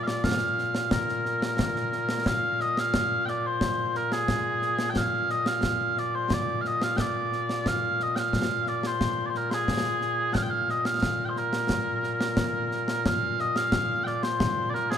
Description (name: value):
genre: scottish traditional, Scottish pipe music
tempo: 89 BPM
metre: 2/4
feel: straight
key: Bb mixolydian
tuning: A4 = 440 Hz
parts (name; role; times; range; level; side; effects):
- mellow small bagpipes; melody; 0.0-15.0 s; Bb2 to G5; -26 LUFS; equal; none
- concert snare drum and concert bass drum; drums; 0.1-15.0 s; none; -30 LUFS; equal; none
room: moderate scoring stage reverb, RT60 1.9 s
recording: none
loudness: -24 LUFS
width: side -8 dB against mid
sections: 0.0-2.3 A section; 2.3-13.1 B section; 13.1-15.0 B section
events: none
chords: none